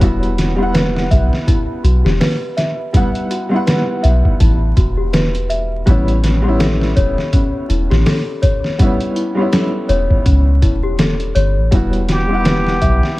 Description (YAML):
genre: trip hop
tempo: 82 BPM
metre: 4/4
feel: swing 58% on 16ths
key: E dorian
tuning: A4 = 439 Hz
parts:
  - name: warm upright piano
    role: accompaniment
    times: 0.0-13.2 s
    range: G3 to F#5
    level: -21 LUFS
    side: equal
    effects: tremolo, tape echo
  - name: small celesta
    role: arpeggios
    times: 0.0-13.2 s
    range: C#4 to E5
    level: -22 LUFS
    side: left 3 dB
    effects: low-pass filter, tape echo
  - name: soft 808-style bass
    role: bass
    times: 0.0-13.0 s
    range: E1 to C#2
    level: -15 LUFS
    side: equal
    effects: none
  - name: trip hop sampler-style drum kit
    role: drums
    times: 0.0-13.2 s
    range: hi-hat, kick drum, snare drum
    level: -16 LUFS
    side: equal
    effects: overdrive
  - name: trumpet with plunger mute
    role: melody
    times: 12.1-13.2 s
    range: G4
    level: -19 LUFS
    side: equal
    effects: none
room: light reverb, studio reverb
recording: vinyl crackle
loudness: -13 LUFS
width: side -18 dB against mid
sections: 0.0-13.2 A section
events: none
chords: 0.0 Emadd9; 5.9 A7; 11.7 Emadd9